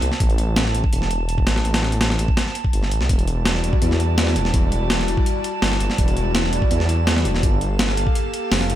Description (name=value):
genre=drum and bass, jungle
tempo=166 BPM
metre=4/4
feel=straight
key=E minor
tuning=A4 = 441 Hz
part: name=detuned saw bass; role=bass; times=0.0-8.8 s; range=E1 to E2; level=-21 LUFS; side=equal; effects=none
part: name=breakbeat sampler-style drum kit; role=drums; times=0.0-8.8 s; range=hi-hat, kick drum, snare drum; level=-20 LUFS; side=equal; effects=studio reverb
part: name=drifting glass-harmonics texture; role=texture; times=0.0-8.8 s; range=A5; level=-29 LUFS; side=right 2 dB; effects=chorus, built-in reverb
part: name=airy breathy pad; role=sustained chords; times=3.3-8.8 s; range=G3 to F5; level=-26 LUFS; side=left 1 dB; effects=chorus
room=digital ambience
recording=none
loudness=-17 LUFS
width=side -12 dB against mid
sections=0.0-8.8 A section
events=none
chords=0.0 A5; 3.1 Em9; 7.4 Gm9